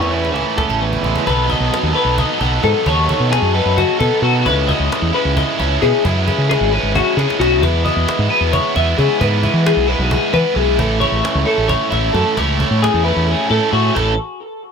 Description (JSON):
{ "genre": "math rock and midwest emo", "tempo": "265 BPM (eighths)", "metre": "7/8", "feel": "straight", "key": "A lydian", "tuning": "A4 = 440 Hz", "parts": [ { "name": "twangy electric guitar", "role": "accompaniment", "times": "0.0-1.3 s", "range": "E2 to G#4", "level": "-23 LUFS", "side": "right 16 dB", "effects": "none" }, { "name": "twelve-string electric guitar", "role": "arpeggios", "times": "0.0-14.2 s", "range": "F#4 to F#5", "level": "-18 LUFS", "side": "left 4 dB", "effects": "wide subtle chorus, analog delay" }, { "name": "biting overdriven guitar", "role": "riff", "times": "0.0-14.1 s", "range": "A2 to A4", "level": "-19 LUFS", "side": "right 4 dB", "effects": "none" }, { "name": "growling fingered electric bass", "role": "bass", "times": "0.0-14.2 s", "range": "G#1 to E3", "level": "-18 LUFS", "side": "equal", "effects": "overdrive" }, { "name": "cajon", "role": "drums", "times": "0.0-14.1 s", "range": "none", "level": "-25 LUFS", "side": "equal", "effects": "none" } ], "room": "little or no reverb", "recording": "none", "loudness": "-13 LUFS", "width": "side -6 dB against mid", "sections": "0.0-1.3 A section; 1.3-13.9 B section", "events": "drum fill 0.0-1.3, 6.9-7.6; kick and snare drop out 13.3-13.9", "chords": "0.0 Amaj7; 1.3 B9; 4.5 C#m9; 7.6 E; 10.8 Amaj7; 13.9 A" }